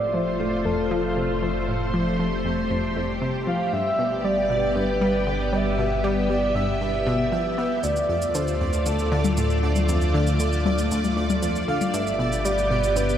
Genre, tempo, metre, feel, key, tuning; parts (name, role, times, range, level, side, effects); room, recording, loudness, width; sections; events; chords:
ambient, sequencer-driven space music; 117 BPM; 4/4; straight; A4 = 440 Hz
breathy flute-like synth lead; melody; 0.0-13.2 s; A4 to F5; -27 LUFS; right 1 dB; chorus, tape echo
string machine, full ensemble; sustained chords; 0.0-13.2 s; A3 to E5; -26 LUFS; left 1 dB; ensemble chorus
round analog bass; bass; 0.0-13.2 s; F1 to D2; -28 LUFS; equal
pulsing gated texture; texture; 3.4-13.2 s; D5; -39 LUFS; right 2 dB
analog pluck; riff; 0.1-13.1 s; D2 to B3; -27 LUFS; equal; chorus, tape echo
electronic cabasa and toms; percussion; 7.8-13.2 s; -29 LUFS; left 4 dB; tape echo
wet cathedral reverb, RT60 5.3 s; in a vast, echoing space; -21 LUFS; side -10 dB against mid
0.0-13.2 A section
0.0 F; 3.7 G; 7.8 Dm; 11.9 G